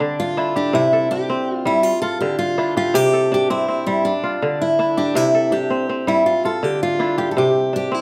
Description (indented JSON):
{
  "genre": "west african traditional",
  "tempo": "109 BPM (dotted quarters)",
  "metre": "12/8",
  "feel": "straight",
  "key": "C major",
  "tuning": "A4 = 440 Hz",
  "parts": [
    { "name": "picked steel-string acoustic guitar", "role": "melody", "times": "0.0-8.0 s", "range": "D4 to A4", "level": "-21 LUFS", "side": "equal", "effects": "none" },
    { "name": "kora", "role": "arpeggios", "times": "0.0-8.0 s", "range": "C3 to A4", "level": "-23 LUFS", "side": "equal", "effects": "none" }
  ],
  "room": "moderate recital hall reverb, RT60 1.3 s",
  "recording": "none",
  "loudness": "-19 LUFS",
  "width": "mono",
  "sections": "0.0-8.0 A section",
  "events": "none",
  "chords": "0.0 Dm; 0.7 C; 1.9 Dm; 3.0 C; 4.1 Dm; 5.2 C; 6.3 Dm; 7.4 C",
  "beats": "0.20 | 0.75 1.30 1.85 2.40 | 2.96 3.51 4.06 4.61 | 5.16 5.72 6.27 6.82 | 7.37 7.92"
}